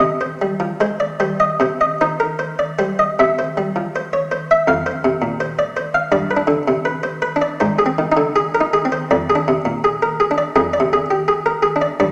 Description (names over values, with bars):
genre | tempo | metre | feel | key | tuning
classical, baroque-style suite movement for harpsichord | 82 BPM | 4/4 | uneven beats, rubato | C minor | A4 = 437 Hz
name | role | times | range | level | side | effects
buff-stop harpsichord | solo | 0.0-12.1 s | F2 to F5 | -18 LUFS | equal | none
room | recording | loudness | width
wet recital hall reverb, RT60 1.4 s | none | -18 LUFS | mono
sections
0.0-3.2 A section; 3.2-12.1 A section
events
none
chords
0.0 Cm; 3.2 C; 4.7 F5; 6.1 G; 7.6 Ab; 9.1 Dm7b5/F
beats
0.80 1.60 2.38 | 3.17 3.93 4.67 5.39 | 6.12 6.86 7.61 8.36 | 9.10 9.84 10.55 11.28 | 11.99